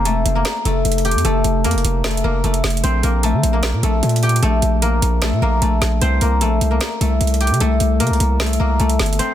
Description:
hip hop, trap; 151 BPM; 4/4; half-time; A4 = 440 Hz
guzheng; melody; 0.0-9.3 s; A3 to G5; -19 LUFS; left 3 dB
hard-hitting 808-style bass; bass; 0.0-9.2 s; E1 to D3; -17 LUFS; right 1 dB
trap drum kit; drums; 0.1-9.3 s; hi-hat, snare drum; -24 LUFS; right 3 dB
little or no reverb; dense, heavily limited modern master; -15 LUFS; side -11 dB against mid
0.0-9.3 A section
0.0 Fadd9; 2.8 N.C.; 6.0 C5
0.06 0.45 0.85 | 1.25 1.64 2.04 2.44 | 2.84 3.23 3.63 4.03 | 4.43 4.82 5.22 5.62 | 6.01 6.41 6.81 7.21 | 7.60 8.00 8.40 8.80 | 9.19

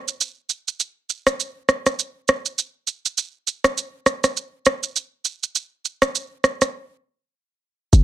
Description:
afrobeats; 101 BPM; 4/4; swing 58% on 16ths; A4 = 440 Hz
electronic shaker and rim click; drums; 0.1-8.0 s; -18 LUFS; right 2 dB; soft clipping on snare
hard-hitting 808-style bass; bass; 7.9-8.0 s; F#1; -10 LUFS; equal
light reverb; dense, heavily limited modern master; -21 LUFS; side -14 dB against mid
0.0-7.9 A section
break 6.7-7.9
0.21 | 0.80 1.40 1.99 2.58 | 3.18 3.77 4.37 4.96 | 5.55 6.15 6.74 7.33 | 7.93

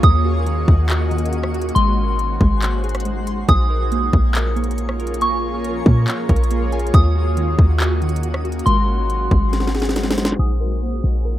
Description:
hip hop, atmospheric cloud-rap; 139 BPM; 4/4; half-time; Bb minor; A4 = 440 Hz
soft synth bell; melody; 0.0-11.4 s; C6 to Eb6; -24 LUFS; equal; chorus, phaser, tape echo
granular cloud pad; sustained chords; 0.0-11.4 s; Eb3 to Db5; -26 LUFS; equal; built-in reverb, sidechain pumping
glassy wavetable pluck; arpeggios; 0.0-11.4 s; Eb3 to Db6; -27 LUFS; right 2 dB; chorus, tape echo
clean 808-style bass; bass; 0.0-11.4 s; Ab1 to Bb2; -18 LUFS; equal
trap drum kit; drums; 0.0-10.4 s; handclaps, hi-hat, kick drum, rim click, snare drum; -19 LUFS; equal
twinkling granular texture; texture; 0.0-11.4 s; Gb4 to Db6; -34 LUFS; left 1 dB; built-in reverb
light reverb; rough home demo mix, low-pass filter; -16 LUFS; side -13 dB against mid
0.0-10.4 A section
drum fill 9.5-10.4
0.0 Ebm7; 1.8 Ab7; 3.5 Bbm7; 6.9 Ebm7; 8.7 Ab7; 10.4 Bbm7
| 0.03 0.46 0.90 1.33 | 1.76 2.19 2.62 3.05 | 3.49 3.92 4.35 4.78 | 5.21 5.64 6.08 6.51 | 6.94 7.37 7.80 8.23 | 8.67 9.10 9.53 9.96 | 10.39 10.82 11.26

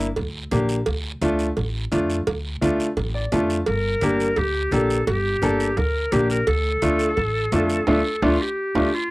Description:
latin, cumbia; 171 BPM; 4/4; straight; D minor; A4 = 436 Hz
clear upright piano; accompaniment; 0.0-8.9 s; A3 to A5; -22 LUFS; left 1 dB; cassette tape
upright bass; bass; 0.0-8.9 s; G1 to F2; -26 LUFS; equal
guiro; percussion; 0.0-8.8 s; -36 LUFS; right 2 dB
congas; percussion; 0.2-8.8 s; -31 LUFS; right 1 dB
cowbell and timbales; percussion; 0.2-8.8 s; -28 LUFS; right 3 dB
clear clarinet; second line; 3.7-9.1 s; F4 to Bb4; -24 LUFS; equal; cassette tape
light reverb; home recording on cassette; -19 LUFS; side -21 dB against mid
0.0-9.1 A section
upright piano fill 3.0-3.7; band accent 7.9-9.1; drum fill 8.2-9.1
0.0 Gm; 0.9 Dm; 3.7 Gm; 6.5 Dm
0.17 0.52 | 0.87 1.22 1.57 1.92 | 2.27 2.62 2.97 3.32 | 3.67 4.02 4.37 4.72 | 5.07 5.42 5.77 6.12 | 6.47 6.83 7.17 7.53 | 7.88 8.23 8.58 8.93

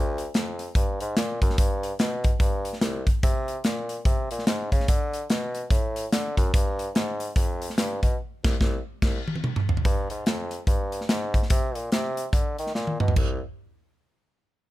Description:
uptempo gospel; 145 BPM; 4/4; swing 61% on 8ths; A4 = 441 Hz
warm bassoon; bass; 0.0-13.4 s; C2 to Eb3; -29 LUFS; equal
modern studio drum kit; drums; 0.2-13.3 s; crash cymbal, hi-hat, kick drum, snare drum, toms; -24 LUFS; equal
little or no reverb; -23 LUFS; side -16 dB against mid
0.0-9.8 A section; 9.8-13.2 B section; 13.2-14.7 C section
band accent 8.2-9.8; drum fill 9.0-9.8, 12.7-13.2
0.34 0.76 1.17 | 1.58 1.99 2.41 2.82 | 3.23 3.65 4.06 4.47 | 4.88 5.30 5.71 6.12 | 6.54 6.95 7.36 7.78 | 8.19 8.61 9.02 9.43 | 9.85 10.26 10.68 11.09 | 11.50 11.92 12.33 12.75 | 13.16

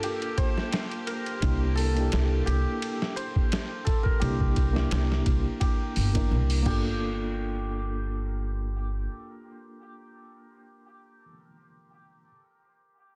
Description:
trip hop; 86 BPM; 4/4; swing 54% on 16ths; G dorian; A4 = 440 Hz
hammered dulcimer; melody; 0.0-11.3 s; F4 to C5; -39 LUFS; equal; vintage 12-bit sampler grit, dub echo
mellow reed electric piano; accompaniment; 0.0-12.3 s; Bb3 to Bb4; -36 LUFS; equal; fast tremolo, tape echo
bright symphonic string section; sustained chords; 0.0-6.7 s; Bb3 to G4; -42 LUFS; equal; vintage 12-bit sampler grit
boom bap sampler-style drum kit; drums; 0.0-6.8 s; crash cymbal, hi-hat, kick drum, ride cymbal, snare drum; -31 LUFS; equal
upright bass; bass; 1.4-9.1 s; G1 to C2; -29 LUFS; equal
small room ambience; dense, heavily limited modern master; -27 LUFS; mono
0.0-7.0 A section; 7.0-9.8 B section
0.0 Gm7; 1.4 C7; 6.7 Gm7
0.03 0.73 | 1.43 2.12 2.82 3.52 | 4.22 4.91 5.61 6.31 | 7.01 7.71 8.40 9.10

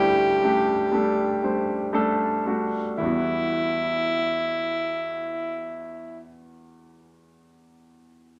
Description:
pop; 55-64 BPM; 4/4; straight; E minor; A4 = 440 Hz
raspy alto saxophone; melody; 0.0-6.2 s; E4 to G4; -26 LUFS; equal
clear baby grand piano; accompaniment; 0.0-8.4 s; D2 to C5; -28 LUFS; equal
moderate studio reverb, RT60 0.9 s; -24 LUFS; mono
0.0-3.0 A section; 3.0-7.4 B section
slowing down 0.0-3.0
0.0 Dsus4; 3.0 Emadd9
0.91 1.92 | 2.99 4.09 5.19 6.29

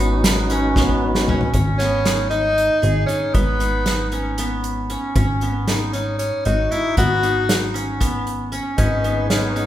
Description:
progressive instrumental, band music in an uneven meter; 232 BPM (eighths); 7/8; straight; G# minor; A4 = 440 Hz
percussive tonewheel organ; accompaniment; 0.0-1.5, 8.8-9.7 s; B3 to B4; -24 LUFS; equal; overdrive, chorus vibrato, slow rotary speaker
qanun; arpeggios; 0.0-9.7 s; B3 to G#4; -24 LUFS; equal
plucky analog bass; bass; 0.0-9.7 s; G#1; -22 LUFS; equal
unplugged drum kit; drums; 0.2-9.7 s; hi-hat, kick drum, snare drum, toms; -22 LUFS; equal
clear tenor saxophone; melody; 1.8-9.7 s; B3 to F#4; -20 LUFS; left 1 dB
wet recital hall reverb, RT60 1.3 s; recorded in a church or concert hall; -17 LUFS; side -12 dB against mid
0.0-1.5 A section; 1.5-9.7 B section
drum fill 0.8-1.5
0.0 Badd9/G#; 1.5 G#m; 5.2 Badd9/G#; 8.8 G#m
0.25 0.51 0.77 1.02 1.28 | 1.54 1.80 2.06 2.32 2.58 2.83 3.09 | 3.35 3.61 3.87 4.13 4.39 4.65 4.91 | 5.16 5.42 5.68 5.94 6.20 6.46 6.72 | 6.98 7.24 7.49 7.75 8.01 8.27 8.53 | 8.79 9.05 9.31 9.57

